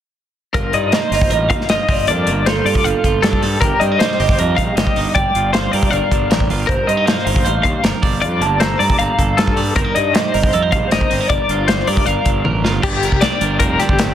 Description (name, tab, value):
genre	math rock and midwest emo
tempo	156 BPM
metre	4/4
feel	straight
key	G minor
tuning	A4 = 440 Hz
part	twelve-string electric guitar	accompaniment	0.5-14.1 s	G2 to D5	-22 LUFS	right 6 dB	none
part	twelve-string electric guitar	arpeggios	0.5-14.1 s	G4 to F5	-20 LUFS	left 6 dB	tremolo
part	fuzz fingered electric bass	bass	0.5-14.1 s	F1 to G2	-21 LUFS	equal	overdrive
part	modern studio drum kit	drums	0.5-14.1 s	crash cymbal, hi-hat, kick drum, snare drum, toms	-18 LUFS	equal	none
part	electric guitar through a small old amp	melody	0.6-12.4 s	A4 to Bb5	-21 LUFS	right 2 dB	spring reverb, digital delay
room	light reverb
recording	dense, heavily limited modern master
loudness	-13 LUFS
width	side -10 dB against mid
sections	0.5-12.8 A section; 12.8-14.1 B section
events	drum fill 12.4-12.8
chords	0.5 F7sus4/G; 1.9 Bbmaj7/G; 3.6 Cm7/G; 5.2 Gm7; 6.7 F7sus4/G; 8.0 Bbmaj7/G; 9.8 Cm7/G; 11.3 Gm7; 12.8 Gm11